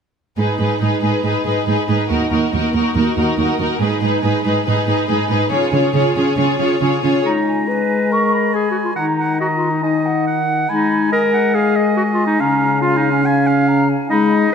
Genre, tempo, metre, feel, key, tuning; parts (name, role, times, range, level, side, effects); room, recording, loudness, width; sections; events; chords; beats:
cinematic; 140 BPM; 4/4; straight; G# dorian; A4 = 443 Hz
rich studio violin section; melody; 0.4-7.2 s; A#4 to C#5; -22 LUFS; left 4 dB
warm symphonic violin section; second line; 0.4-7.2 s; F#4 to G#4; -22 LUFS; left 3 dB
rich symphonic viola section; accompaniment; 0.4-7.2 s; D#4 to E#4; -22 LUFS; right 2 dB
dark symphonic cello section; bass; 0.4-7.1 s; D#2 to C#3; -18 LUFS; right 4 dB
clear clarinet; second line; 7.3-14.5 s; C#4 to B4; -18 LUFS; left 2 dB
clear oboe; second line; 7.3-14.5 s; D#5 to A#5; -22 LUFS; right 3 dB
mellow silver concert flute; second line; 7.3-14.3 s; E#5 to C#6; -22 LUFS; equal
mellow French horn section; sustained chords; 7.3-14.5 s; C#3 to G#3; -19 LUFS; left 3 dB
moderate concert hall reverb, RT60 2.2 s; -14 LUFS; side -6 dB against mid
0.4-7.2 A section; 7.2-14.5 B section
0.4 G#m; 2.1 D#m; 3.8 G#m; 5.5 C#; 7.2 G#m; 9.0 D#m; 10.7 G#m; 12.4 C#
| 0.38 0.81 1.24 1.68 | 2.10 2.53 2.96 3.39 | 3.81 4.24 4.67 5.09 | 5.52 5.94 6.38 6.81 | 7.25 7.68 8.11 8.54 | 8.97 9.40 9.83 10.26 | 10.69 11.12 11.54 11.97 | 12.40 12.82 13.25 13.67 | 14.10 14.53